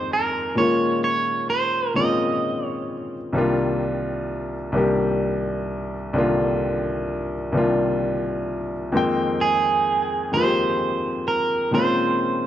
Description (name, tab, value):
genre	R&B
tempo	43 BPM (dotted quarters)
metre	6/8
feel	straight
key	C minor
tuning	A4 = 440 Hz
part	electric guitar at the edge of break-up	melody	0.0-3.0, 9.4-12.5 s	Ab4 to Eb5	-22 LUFS	right 4 dB	spring reverb, tape echo
part	warm baby grand piano	accompaniment	0.0-12.5 s	C2 to G5	-22 LUFS	left 2 dB	none
room	light reverb, small room ambience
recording	dark, warm production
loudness	-20 LUFS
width	side -11 dB against mid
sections	0.0-12.5 A section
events	none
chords	0.0 Fm11; 0.6 Bbm11; 3.3 Cm11; 8.9 Fm11; 11.7 Bbm11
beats	| 0.56 1.95 | 3.35 4.74 | 6.14 7.54 | 8.93 10.33 | 11.72